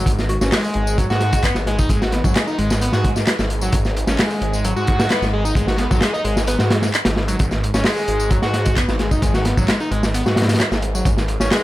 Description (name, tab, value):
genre	breakbeat, breaks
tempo	131 BPM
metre	4/4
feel	straight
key	G# minor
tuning	A4 = 440 Hz
part	overdriven synth lead	riff	0.0-11.6 s	F#3 to F#4	-23 LUFS	equal	distortion, cassette tape, dub echo
part	phased detuned saw bass	bass	0.0-11.5 s	G#1 to G#2	-21 LUFS	equal	phaser, tube saturation
part	crunchy breakbeat drum kit	drums	0.1-11.6 s	hi-hat, kick drum, snare drum	-19 LUFS	equal	none
part	electronic tambourine and handclaps	drums	0.1-11.6 s	none	-26 LUFS	equal	none
part	soft struck synth lead	melody	0.3-0.5, 6.5-6.7 s	F#4 to B4	-30 LUFS	equal	chorus, small speaker sound, dub echo
room	little or no reverb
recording	none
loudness	-16 LUFS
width	side -16 dB against mid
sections	0.0-11.6 A section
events	none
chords	0.0 G#7(no3)